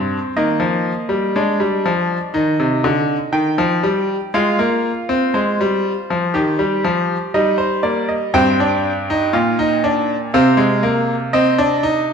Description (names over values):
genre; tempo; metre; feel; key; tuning
classical, baroque-style 3-part fugue for grand piano; 60 BPM; 4/4; straight; C minor from 8.3 s; A4 = 439 Hz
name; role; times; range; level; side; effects
bright grand piano; solo; 0.0-12.1 s; G2 to G5; -15 LUFS; equal; none
room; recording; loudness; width
wet recital hall reverb, RT60 1.3 s; minimal, uncompressed stereo recording; -15 LUFS; side -6 dB against mid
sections
0.0-8.3 A section; 8.3-12.1 B section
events
none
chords
0.4 Eb; 2.3 Cm; 4.3 Fm/Ab; 6.3 Eb; 8.3 Cm/G (rootless); 10.3 Ab/C